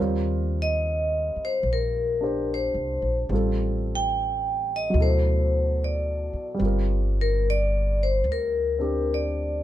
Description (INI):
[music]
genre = jazz ballad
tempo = 73 BPM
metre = 4/4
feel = swing 67% on 8ths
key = Eb major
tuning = A4 = 442 Hz
[part]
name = warm upright piano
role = accompaniment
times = 0.0-9.6 s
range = Cb3 to C5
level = -30 LUFS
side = right 1 dB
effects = none
[part]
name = upright bass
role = bass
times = 0.0-9.6 s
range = G1 to Eb2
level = -26 LUFS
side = equal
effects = none
[part]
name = vibraphone with medium hard mallets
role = melody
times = 0.6-9.6 s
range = Bb4 to G5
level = -26 LUFS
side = left 1 dB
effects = plate reverb
[sound]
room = little or no reverb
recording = dark, warm production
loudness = -22 LUFS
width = side -13 dB against mid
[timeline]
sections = 0.0-9.6 A section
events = none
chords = 0.0 Eb69; 3.3 Fadd9/A; 5.0 D7; 6.6 Gm7